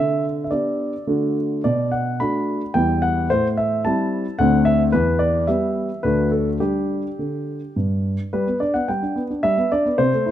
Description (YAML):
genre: classical-period piano sonatina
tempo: 108 BPM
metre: 3/4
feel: rubato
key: G major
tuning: A4 = 439 Hz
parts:
  - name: warm grand piano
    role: solo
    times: 0.0-10.3 s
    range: D2 to B5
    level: -18 LUFS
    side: equal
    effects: none
room: moderate recital hall reverb, RT60 1.8 s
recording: close, detailed microphones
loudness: -18 LUFS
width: side -11 dB against mid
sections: 0.0-8.3 A section; 8.3-10.3 A section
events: none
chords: 0.0 G/D; 1.1 D; 1.7 Bm7; 2.8 Em; 3.3 Am7; 4.4 D7; 4.9 Em; 6.0 D; 6.6 G5; 8.3 G